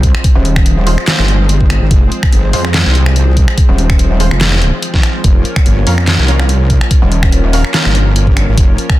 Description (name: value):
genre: heavy wobble dubstep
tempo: 144 BPM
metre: 4/4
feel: swing 54% on 16ths, half-time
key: F minor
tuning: A4 = 441 Hz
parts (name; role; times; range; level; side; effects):
- lush unison pad; sustained chords; 0.0-9.0 s; F3 to Db4; -22 LUFS; equal; chorus, sidechain pumping
- wobble bass; bass; 0.0-8.8 s; F1 to F2; -11 LUFS; equal; chorus, overdrive
- dubstep drum kit; drums; 0.0-9.0 s; finger snaps, handclaps, hi-hat, snare drum; -17 LUFS; equal; soft clipping on snare
- electronic kick drum; drums; 0.0-9.0 s; none; -10 LUFS; equal; none
- pulsing pluck wobble bass; bass; 0.4-1.0, 3.7-4.3, 7.0-7.6 s; Eb1; -12 LUFS; equal; chorus, overdrive
- orchestra-hit-like synth stab; stabs; 0.9-7.9 s; Ab3 to F5; -23 LUFS; right 2 dB; built-in reverb, digital delay
room: digital ambience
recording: dense, heavily limited modern master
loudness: -8 LUFS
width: side -16 dB against mid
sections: 0.0-9.0 A section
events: none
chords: 0.0 Fm; 5.2 Bbm